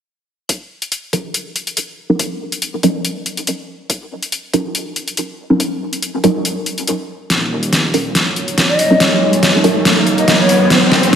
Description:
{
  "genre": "deep dubstep",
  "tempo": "141 BPM",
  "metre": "4/4",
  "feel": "swing 54% on 16ths, half-time",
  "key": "Eb minor",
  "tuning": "A4 = 441 Hz",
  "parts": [
    { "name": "dubstep drum kit", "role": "drums", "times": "0.5-11.2 s", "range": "hi-hat, snare drum", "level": "-16 LUFS", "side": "left 1 dB", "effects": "overdrive, small room reverb" },
    { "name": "electronic kick drum", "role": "drums", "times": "0.5-6.3 s", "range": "none", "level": "-24 LUFS", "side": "equal", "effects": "overdrive, high-pass filter on kick, small room reverb" },
    { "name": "filtered dub chord stab", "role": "stabs", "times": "1.1-9.8 s", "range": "Gb3 to Bb4", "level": "-18 LUFS", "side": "right 1 dB", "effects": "phaser, analog chorus, dub echo" },
    { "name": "deep dark ambient pad", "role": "sustained chords", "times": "8.4-11.2 s", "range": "Gb3 to Eb5", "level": "-17 LUFS", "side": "right 1 dB", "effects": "chorus, built-in reverb" },
    { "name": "dark detuned saw bass", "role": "bass", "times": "7.3-11.2 s", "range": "Eb1", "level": "-24 LUFS", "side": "equal", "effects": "none" },
    { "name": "riser", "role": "sound effects", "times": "8.3-11.2 s", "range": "none", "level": "-19 LUFS", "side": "right 1 dB", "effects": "none" },
    { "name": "breathy low ney", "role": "melody", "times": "8.7-10.7 s", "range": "Db5 to Eb5", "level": "-18 LUFS", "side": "left 2 dB", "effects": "dub echo" }
  ],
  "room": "wet lush hall reverb, RT60 1.7 s",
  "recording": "dreamy mix soaked in reverb",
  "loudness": "-14 LUFS",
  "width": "side -8 dB against mid",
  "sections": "0.5-7.3 A section; 7.3-11.2 B section",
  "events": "build-up 7.3-11.2; drum fill 7.3-11.2; filter sweep on synth stab 7.3-11.2; riser 8.3-11.2",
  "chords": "0.5 Ebm7"
}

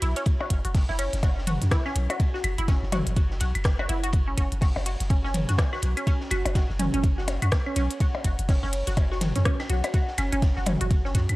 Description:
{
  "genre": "minimal techno",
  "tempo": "124 BPM",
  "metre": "4/4",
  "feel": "swing 59% on 16ths",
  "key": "unclear",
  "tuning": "A4 = 440 Hz",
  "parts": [
    { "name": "resonant blip pluck", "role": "riff", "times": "0.0-11.2 s", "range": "C#4 to F#4", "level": "-31 LUFS", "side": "right 1 dB", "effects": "phaser, cassette tape, sidechain pumping, tape echo" },
    { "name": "punchy sub bass", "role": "bass", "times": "0.0-11.4 s", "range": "F#1 to F#2", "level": "-27 LUFS", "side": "equal", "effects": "sidechain pumping" },
    { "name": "crunchy breakbeat drum kit", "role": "drums", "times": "0.0-11.3 s", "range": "hi-hat, ride cymbal, snare drum", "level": "-40 LUFS", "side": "equal", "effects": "sidechain pumping on cymbals, high-pass filter on cymbals, studio reverb, sidechain pumping on hats, high-pass filter on hats, high-pass filter on snare, high-pass filter on room" },
    { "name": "minimal click drum kit", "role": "drums", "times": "0.0-11.4 s", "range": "hi-hat, rim click", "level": "-32 LUFS", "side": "left 1 dB", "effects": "studio reverb" },
    { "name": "electronic kick drum", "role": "drums", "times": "0.3-11.3 s", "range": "none", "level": "-23 LUFS", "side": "equal", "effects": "studio reverb" },
    { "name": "electronic percussion blips, toms and claves", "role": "percussion", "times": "0.4-11.4 s", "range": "none", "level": "-31 LUFS", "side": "left 1 dB", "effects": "studio reverb" }
  ],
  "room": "studio ambience",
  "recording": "dry, gritty hardware recording",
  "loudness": "-22 LUFS",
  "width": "side -19 dB against mid",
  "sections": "0.0-11.4 A section",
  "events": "none",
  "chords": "none"
}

